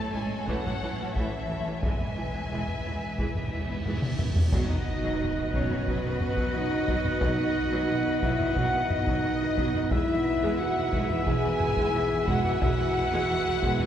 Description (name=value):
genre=cinematic, epic orchestral film score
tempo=89 BPM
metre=4/4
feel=straight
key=B major from 4.5 s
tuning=A4 = 439 Hz
part: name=warm symphonic violin section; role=melody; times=0.0-13.9 s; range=B4 to A5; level=-37 LUFS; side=left 4 dB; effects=none
part: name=rich chamber violin section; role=second line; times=0.0-13.9 s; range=A4 to E5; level=-38 LUFS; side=left 3 dB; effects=none
part: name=dark French horn section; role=sustained chords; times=0.0-13.9 s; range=E3 to G#4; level=-31 LUFS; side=equal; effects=none
part: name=rich symphonic cello section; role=bass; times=0.0-13.9 s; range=E2 to A3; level=-36 LUFS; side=right 2 dB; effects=none
part: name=timpani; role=percussion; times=0.0-5.5 s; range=E2 to B2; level=-38 LUFS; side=equal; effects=none
part: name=warm symphonic viola section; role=accompaniment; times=0.1-13.9 s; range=D#3 to F#4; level=-35 LUFS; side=right 1 dB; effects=none
part: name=clear symphonic double bass section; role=bass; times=0.1-13.7 s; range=E1 to B1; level=-35 LUFS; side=right 2 dB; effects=none
part: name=solo taiko drums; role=drums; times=0.5-13.9 s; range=none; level=-31 LUFS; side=equal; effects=none
part: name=cymbal swell and sub drop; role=sound effects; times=3.4-7.2 s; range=none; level=-42 LUFS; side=equal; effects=none
part: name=hollow flute section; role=second line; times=4.5-13.9 s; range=B4 to G#5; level=-34 LUFS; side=equal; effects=none
part: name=warm trombone section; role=sustained chords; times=4.5-13.9 s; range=B2 to B3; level=-39 LUFS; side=right 2 dB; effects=none
part: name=warm trumpet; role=stabs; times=4.5-13.9 s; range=E5 to F#5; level=-35 LUFS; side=equal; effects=none
room=wet cathedral reverb, RT60 6.7 s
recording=recorded in a church or concert hall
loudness=-24 LUFS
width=side -10 dB against mid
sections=0.0-4.5 A section; 4.5-13.9 B section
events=timpani fill 1.8-4.5; cymbal swell 3.4-4.5; drum fill 3.9-4.5; impact 4.5-7.2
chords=0.0 A; 1.8 E; 4.5 B; 9.9 E